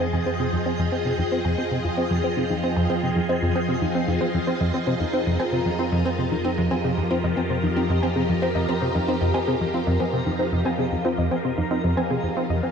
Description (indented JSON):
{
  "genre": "ambient, sequencer-driven space music",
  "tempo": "114 BPM",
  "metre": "4/4",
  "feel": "straight",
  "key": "F minor",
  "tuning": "A4 = 440 Hz",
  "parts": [
    { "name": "phased string machine", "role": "sustained chords", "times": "0.0-12.7 s", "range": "F3 to Eb5", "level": "-26 LUFS", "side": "equal", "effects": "ensemble chorus, phaser, shimmer reverb" },
    { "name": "plucky analog bass", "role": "riff", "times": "0.0-12.7 s", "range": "F2 to C4", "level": "-24 LUFS", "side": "equal", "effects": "wide subtle chorus, analog delay" },
    { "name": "analog drone", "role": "bass", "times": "0.0-12.7 s", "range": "F2", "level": "-34 LUFS", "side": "equal", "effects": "chorus" },
    { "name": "twinkling granular texture", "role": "texture", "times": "0.0-12.7 s", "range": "Bb4 to G5", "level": "-34 LUFS", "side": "left 1 dB", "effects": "built-in reverb, lush chorus, shimmer reverb" },
    { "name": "warbly dusty pluck", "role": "arpeggios", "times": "0.1-12.6 s", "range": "Eb4 to Ab5", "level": "-32 LUFS", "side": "moving between left 6 dB and right 2 dB", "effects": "chorus, auto-pan, analog delay, shimmer reverb" }
  ],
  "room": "wet lush hall reverb, RT60 2.8 s",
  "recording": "dreamy mix soaked in reverb",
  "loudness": "-21 LUFS",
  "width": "side -6 dB against mid",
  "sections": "0.0-12.7 A section",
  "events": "filter sweep on synth arpeggio sound 0.0-12.7",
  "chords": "0.0 Fm7"
}